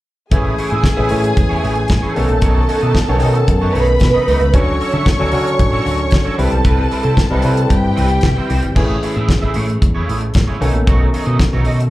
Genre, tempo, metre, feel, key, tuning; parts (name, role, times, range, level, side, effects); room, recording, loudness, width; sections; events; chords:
disco; 114 BPM; 4/4; straight; A major; A4 = 440 Hz
warm symphonic string section; second line; 0.3-8.7 s; G4 to C#6; -20 LUFS; right 1 dB; plate reverb, slapback echo
barky tine electric piano; accompaniment; 0.3-11.9 s; D#3 to B4; -20 LUFS; left 2 dB; overdrive, plate reverb
electric guitar at the edge of break-up; accompaniment; 0.3-11.8 s; G3 to E5; -24 LUFS; right 4 dB; ensemble chorus, plate reverb, slapback echo
fingered electric bass; bass; 0.3-11.9 s; G#1 to D3; -17 LUFS; equal
damped 70s drum kit; drums; 0.3-11.9 s; crash cymbal, hi-hat, kick drum, snare drum; -16 LUFS; equal
light reverb; live gig heard through the venue's PA, club reverb; -12 LUFS; side -16 dB against mid
0.3-8.8 A section; 8.8-11.9 B section
0.3 Amaj7; 2.2 B9; 4.5 Dmaj7; 6.4 Cmaj7; 8.8 Amaj7; 10.6 B9